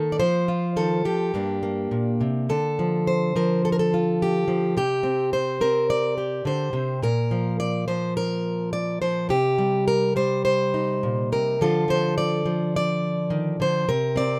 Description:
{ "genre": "folk, solo fingerstyle acoustic guitar", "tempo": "105 BPM", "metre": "4/4", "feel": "straight", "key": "unclear", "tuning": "A4 = 440 Hz", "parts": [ { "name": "fingerpicked plugged-in steel-string acoustic guitar", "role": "solo", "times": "0.0-14.4 s", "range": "G2 to D5", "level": "-23 LUFS", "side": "equal", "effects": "none" } ], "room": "light reverb", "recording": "none", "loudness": "-23 LUFS", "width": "mono", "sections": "0.0-2.5 A section; 2.5-14.4 B section", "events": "none", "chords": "0.2 F; 1.3 Gm; 2.5 Dm; 4.8 C5; 7.0 Bb5; 9.3 Cm; 11.6 Dm; 13.9 N.C.", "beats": "| 0.20 0.76 1.34 1.92 | 2.50 3.07 3.65 4.21 | 4.77 5.33 5.90 6.46 | 7.03 7.59 8.16 8.72 | 9.29 9.86 10.44 11.01 | 11.59 12.16 12.73 13.30 | 13.87" }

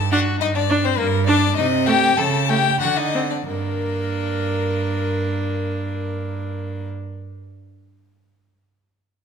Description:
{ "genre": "quick classical-period movement for string quartet", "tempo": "89-104 BPM", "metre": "2/4", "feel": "straight", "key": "G minor", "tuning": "A4 = 440 Hz", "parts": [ { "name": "warm violin", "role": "melody", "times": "0.0-6.9 s", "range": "Bb4 to A5", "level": "-24 LUFS", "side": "left 8 dB", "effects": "none" }, { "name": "rich cello", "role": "bass", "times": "0.0-6.9 s", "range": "G2 to D3", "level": "-23 LUFS", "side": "right 5 dB", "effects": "none" }, { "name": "rich violin", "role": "second line", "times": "0.1-6.9 s", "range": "Bb3 to A4", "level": "-25 LUFS", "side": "left 3 dB", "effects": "none" }, { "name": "warm viola", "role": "accompaniment", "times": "0.1-6.9 s", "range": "A3 to D4", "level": "-26 LUFS", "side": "right 1 dB", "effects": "none" } ], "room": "moderate scoring stage reverb, RT60 1.6 s", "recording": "none", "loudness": "-18 LUFS", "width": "side -6 dB against mid", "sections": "0.0-3.5 A section; 3.5-6.1 B section", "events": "slowing down 0.4-3.5", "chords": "0.0 Gm; 1.6 Adim/C; 2.2 A7/C#; 2.8 D7b9; 3.5 Gm", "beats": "0.41 | 0.99 1.57 | 2.18 2.81 | 3.47 4.13 | 4.79 5.46" }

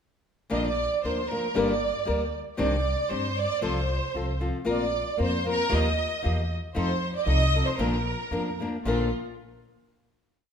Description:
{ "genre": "mexican folk, mariachi", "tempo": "115 BPM", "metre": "2/4", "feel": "rubato", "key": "Bb major", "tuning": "A4 = 444 Hz", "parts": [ { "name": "rich studio violin section", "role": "melody", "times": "0.5-9.1 s", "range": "F4 to Eb5", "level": "-28 LUFS", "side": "right 2 dB", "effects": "none" }, { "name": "flamenco guitar", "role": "accompaniment", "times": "0.5-9.1 s", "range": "G2 to Bb4", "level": "-29 LUFS", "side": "left 2 dB", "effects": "none" }, { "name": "upright bass", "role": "bass", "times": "0.5-9.1 s", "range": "G1 to G2", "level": "-29 LUFS", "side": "equal", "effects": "none" } ], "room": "moderate recital hall reverb, RT60 1.3 s", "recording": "minimal, uncompressed stereo recording", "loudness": "-24 LUFS", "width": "side -7 dB against mid", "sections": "0.5-8.9 A section; 8.9-9.9 final chord", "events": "none", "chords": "0.5 Bb; 1.6 Gm; 2.6 Cmadd9; 3.6 F/C; 4.7 Bbsus2; 5.7 Ebadd9; 6.8 F7; 7.8 Bb", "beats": "| 0.51 1.04 | 1.56 2.08 | 2.60 3.11 | 3.63 4.16 | 4.68 5.21 | 5.73 6.25 | 6.76 7.27 | 7.79 8.32 | 8.85" }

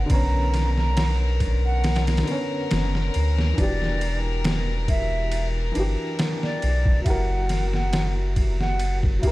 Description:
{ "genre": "trip hop", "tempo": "69 BPM", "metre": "4/4", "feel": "swing 54% on 16ths", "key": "B harmonic minor", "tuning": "A4 = 442 Hz", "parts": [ { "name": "breathy mellow jazz flute", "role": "melody", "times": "0.0-9.0 s", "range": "D5 to A#5", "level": "-31 LUFS", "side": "right 1 dB", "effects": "tape echo" }, { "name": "dark upright piano", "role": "accompaniment", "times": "0.0-9.3 s", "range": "D3 to A#4", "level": "-30 LUFS", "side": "equal", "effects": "tremolo, tape echo" }, { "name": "clear chamber string section", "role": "sustained chords", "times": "0.0-9.3 s", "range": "A#4", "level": "-33 LUFS", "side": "left 4 dB", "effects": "vintage 12-bit sampler grit" }, { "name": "soft dub sub bass", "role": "bass", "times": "0.0-9.2 s", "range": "E1 to D2", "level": "-23 LUFS", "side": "equal", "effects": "tube saturation" }, { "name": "trip hop sampler-style drum kit", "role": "drums", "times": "0.1-9.3 s", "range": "kick drum, ride cymbal, snare drum", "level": "-25 LUFS", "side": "equal", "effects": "overdrive" } ], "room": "small room ambience", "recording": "none", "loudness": "-20 LUFS", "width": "side -18 dB against mid", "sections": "0.0-9.3 A section", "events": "none", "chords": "0.0 Bmadd9; 3.6 Em9; 7.1 F#7b9", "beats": "| 0.10 0.97 1.84 2.71 | 3.58 4.45 5.32 6.19 | 7.06 7.93 8.80" }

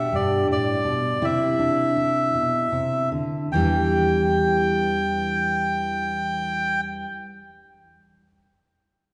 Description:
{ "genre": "folk", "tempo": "50-56 BPM (dotted quarters)", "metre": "6/8", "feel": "straight", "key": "E minor", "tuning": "A4 = 441 Hz", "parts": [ { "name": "melodica", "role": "melody", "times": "0.0-6.8 s", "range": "D5 to G5", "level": "-26 LUFS", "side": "equal", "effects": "none" }, { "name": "fingerpicked steel-string acoustic guitar", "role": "accompaniment", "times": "0.0-7.1 s", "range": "E2 to G4", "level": "-26 LUFS", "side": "equal", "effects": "none" } ], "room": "wet concert hall reverb, RT60 2.3 s", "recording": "heard from further back in the room, nothing above 10.4 kHz", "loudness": "-23 LUFS", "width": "mono", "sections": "0.0-3.5 A section; 3.5-8.3 B section", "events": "slowing down 0.0-3.5", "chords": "0.0 Gadd9; 1.2 Cadd9; 3.5 Em7", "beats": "0.12 | 1.22 2.35 | 3.52 4.71 | 5.91" }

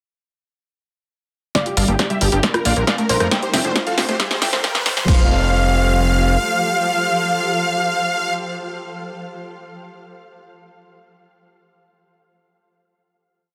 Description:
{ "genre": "uplifting trance", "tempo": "136 BPM", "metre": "4/4", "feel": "straight", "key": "F major", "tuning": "A4 = 442 Hz", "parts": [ { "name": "glassy wavetable pluck", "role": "second line", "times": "1.5-8.3 s", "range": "C5 to D5", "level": "-32 LUFS", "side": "equal", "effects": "none" }, { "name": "dense compressed supersaw", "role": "melody", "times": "1.6-8.3 s", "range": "G4 to G5", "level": "-24 LUFS", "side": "equal", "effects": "sidechain pumping, low-pass filter, digital delay" }, { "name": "warm concert grand piano", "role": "second line", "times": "1.6-8.3 s", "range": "G4 to G5", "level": "-33 LUFS", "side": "equal", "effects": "none" }, { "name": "shimmering ambient pad", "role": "sustained chords", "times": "2.6-8.3 s", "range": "F3 to C5", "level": "-31 LUFS", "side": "equal", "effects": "chorus, built-in reverb, sidechain pumping" }, { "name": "unison pluck", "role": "arpeggios", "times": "1.6-5.3 s", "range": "D3 to G4", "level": "-30 LUFS", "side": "equal", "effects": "none" }, { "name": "punchy analog drum machine", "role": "drums", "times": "1.6-5.2 s", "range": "crash cymbal, kick drum, snare drum", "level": "-21 LUFS", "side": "equal", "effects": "high-pass filter on kick, high-pass filter on snare, high-pass filter on cymbals, high-pass filter on room" }, { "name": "punchy analog drum machine", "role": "drums", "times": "1.6-5.1 s", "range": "hi-hat, rim click, snare drum", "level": "-24 LUFS", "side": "equal", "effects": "none" }, { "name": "riser", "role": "sound effects", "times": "3.0-5.1 s", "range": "none", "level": "-35 LUFS", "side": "equal", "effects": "none" }, { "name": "gritty driven synth bass", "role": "bass", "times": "1.8-6.4 s", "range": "F1 to F2", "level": "-21 LUFS", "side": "equal", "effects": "sidechain pumping" } ], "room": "light reverb", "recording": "dense, heavily limited modern master, high-pass filter", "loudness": "-18 LUFS", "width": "mono", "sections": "1.6-5.1 build; 5.1-8.6 final chord", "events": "build-up 1.6-5.1; drum fill 1.6-5.1; filter sweep on supersaw synth 1.6-5.1; filter sweep on synth pluck 1.6-5.1; filter sweep 1.6-5.1", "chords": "1.6 Gm7; 2.4 Bbmaj7; 3.3 Fadd9", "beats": "| 1.55 1.99 2.43 2.87 | 3.32 3.76 4.20 4.64 | 5.08 5.52 5.96 6.40 | 6.84 7.29 7.73 8.17" }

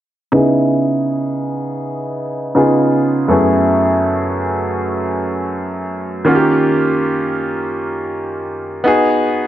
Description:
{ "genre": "R&B", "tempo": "81 BPM", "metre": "4/4", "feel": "swing 58% on 16ths", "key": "C# minor", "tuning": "A4 = 440 Hz", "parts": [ { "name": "bright baby grand piano", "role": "accompaniment", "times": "0.3-9.5 s", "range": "F#2 to G#4", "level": "-14 LUFS", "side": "equal", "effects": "low-pass filter" } ], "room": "light reverb, studio reverb", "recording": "none", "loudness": "-14 LUFS", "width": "side -12 dB against mid", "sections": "0.3-9.5 A section", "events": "filter sweep on grand piano 0.3-9.5", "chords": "0.3 C#m7; 2.6 C#7; 3.3 F#m11; 6.3 D#7; 8.9 G#m7", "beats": "| 0.33 1.07 1.82 2.56 | 3.30 4.04 4.78 5.52 | 6.26 7.00 7.74 8.48 | 9.22" }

